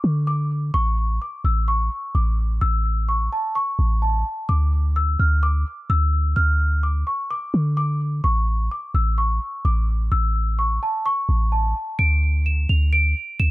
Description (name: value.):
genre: hip hop, trap.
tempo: 128 BPM.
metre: 4/4.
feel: half-time.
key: unclear.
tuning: A4 = 440 Hz.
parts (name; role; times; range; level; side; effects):
celesta; melody; 0.0-13.5 s; A5 to F7; -24 LUFS; equal; digital delay.
clean 808-style bass; bass; 0.0-13.5 s; A1 to D3; -19 LUFS; equal; none.
room: small room ambience.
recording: dark, warm production.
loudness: -19 LUFS.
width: side -18 dB against mid.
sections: 0.0-12.0 A section; 12.0-13.5 B section.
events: none.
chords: 0.0 N.C.; 0.7 A; 4.5 N.C.; 8.2 A; 12.0 N.C..